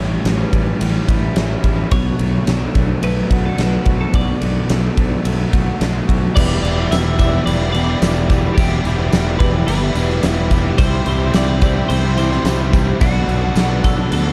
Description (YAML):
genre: rock, shoegaze and dream pop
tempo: 108 BPM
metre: 4/4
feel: straight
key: E minor from 6.4 s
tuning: A4 = 440 Hz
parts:
  - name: twelve-string electric guitar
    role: melody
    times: 0.0-14.3 s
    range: F#4 to E5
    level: -29 LUFS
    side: equal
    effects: subtle chorus, digital delay
  - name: overdriven electric guitar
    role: riff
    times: 0.0-14.3 s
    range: A2 to G4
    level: -28 LUFS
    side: equal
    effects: none
  - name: overdriven semi-hollow guitar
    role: riff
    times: 0.0-14.3 s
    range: E2 to G4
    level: -27 LUFS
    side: equal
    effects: reverse reverb
  - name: raw garage guitar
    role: riff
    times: 0.0-14.3 s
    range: E2 to F#4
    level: -28 LUFS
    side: equal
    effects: overdrive, lush chorus
  - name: fuzz fingered electric bass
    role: bass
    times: 0.0-14.3 s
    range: E1 to D2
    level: -21 LUFS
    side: equal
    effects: overdrive
  - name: huge arena drum kit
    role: drums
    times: 0.3-14.2 s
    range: crash cymbal, kick drum, ride cymbal, snare drum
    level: -20 LUFS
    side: equal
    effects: none
  - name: musette accordion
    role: sustained chords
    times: 6.3-14.3 s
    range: G4 to B5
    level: -30 LUFS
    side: equal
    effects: none
  - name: tambourine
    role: percussion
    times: 6.4-14.2 s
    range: none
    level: -43 LUFS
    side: equal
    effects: none
room: studio reverb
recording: dark, warm production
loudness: -16 LUFS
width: mono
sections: 0.0-6.4 A section; 6.4-14.3 B section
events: none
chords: 0.0 A7; 1.9 Bm7; 6.4 Em7; 10.8 Cmaj7; 13.0 Bm7